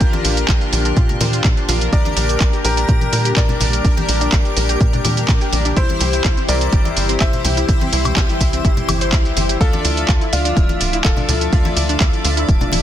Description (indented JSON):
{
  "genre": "progressive house",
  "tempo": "125 BPM",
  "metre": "4/4",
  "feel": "straight",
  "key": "unclear",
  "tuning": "A4 = 440 Hz",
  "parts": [
    { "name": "bright grand piano", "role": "melody", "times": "0.0-12.8 s", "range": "Bb3 to E5", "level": "-26 LUFS", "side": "left 1 dB", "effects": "sidechain pumping, digital delay" },
    { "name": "airy dreamy lead", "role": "second line", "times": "0.0-12.8 s", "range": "F4 to E5", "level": "-29 LUFS", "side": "left 1 dB", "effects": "chorus, sidechain pumping, digital delay" },
    { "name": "filtered supersaw swell", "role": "sustained chords", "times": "0.0-12.8 s", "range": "Bb2 to E5", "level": "-28 LUFS", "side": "right 1 dB", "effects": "sidechain pumping" },
    { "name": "chorused polysynth", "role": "stabs", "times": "0.0-12.8 s", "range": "D4 to E5", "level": "-24 LUFS", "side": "left 4 dB", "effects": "cassette tape, sidechain pumping, digital delay" },
    { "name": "tight sequencer bass", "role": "bass", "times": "0.0-12.8 s", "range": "D1 to Bb2", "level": "-20 LUFS", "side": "equal", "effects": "sidechain pumping" },
    { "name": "electronic kick drum", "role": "drums", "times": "0.0-12.6 s", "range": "none", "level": "-16 LUFS", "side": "equal", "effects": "overdrive" },
    { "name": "pop drum kit", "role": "drums", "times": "0.0-12.8 s", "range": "handclaps, hi-hat, shaker, woodblock", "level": "-22 LUFS", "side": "right 1 dB", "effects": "sidechain pumping on hats, sidechain pumping on cymbals, sidechain pumping on perc" },
    { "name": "wide unison pluck", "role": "arpeggios", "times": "0.1-12.8 s", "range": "C4 to C6", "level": "-27 LUFS", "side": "equal", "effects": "vintage 12-bit sampler grit, sidechain pumping, digital delay" },
    { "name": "congas", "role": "percussion", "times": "0.1-12.8 s", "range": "none", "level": "-27 LUFS", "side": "left 3 dB", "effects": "sidechain pumping on perc" }
  ],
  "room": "little or no reverb",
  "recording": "dense, heavily limited modern master",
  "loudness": "-14 LUFS",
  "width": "side -11 dB against mid",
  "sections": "0.0-12.8 A section",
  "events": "none",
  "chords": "0.0 Bb; 1.9 Gm/Bb; 5.8 C; 9.6 Dmadd9"
}